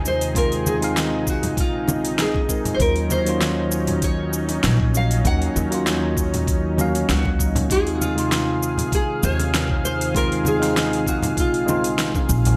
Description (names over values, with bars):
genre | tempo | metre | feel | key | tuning
sunset chillout | 98 BPM | 4/4 | straight | unclear | A4 = 443 Hz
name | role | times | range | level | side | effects
nylon-string guitar | melody | 0.0-12.3 s | F4 to Gb5 | -28 LUFS | equal | lush chorus, digital delay
tine electric piano | accompaniment | 0.0-12.6 s | C3 to F5 | -27 LUFS | equal | low-pass filter, digital delay
lush unison pad | sustained chords | 0.0-12.6 s | C3 to F5 | -30 LUFS | equal | chorus
upright bass | bass | 0.0-12.5 s | Bb1 to Eb2 | -27 LUFS | equal | none
bongos and congas | percussion | 0.0-12.6 s | none | -30 LUFS | equal | none
deep house drum kit | drums | 0.1-12.6 s | cabasa, hi-hat, snare drum | -28 LUFS | equal | overdrive, studio ambience, gated reverb
electronic kick drum | drums | 0.4-12.4 s | none | -26 LUFS | equal | studio ambience
room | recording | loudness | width
moderate plate reverb, RT60 1.4 s, small room ambience | bright 1980s-style digital production | -21 LUFS | mono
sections
0.0-12.6 A section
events
filter sweep on tine electric piano 0.0-12.6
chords
0.0 Dbmaj7/Eb (rootless); 2.8 Ebm9; 7.7 Dbmaj7/Eb (rootless)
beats
| 0.35 0.97 1.58 2.19 | 2.80 3.42 4.03 4.64 | 5.25 5.86 6.48 7.09 | 7.70 8.31 8.93 9.54 | 10.15 10.76 11.37 11.99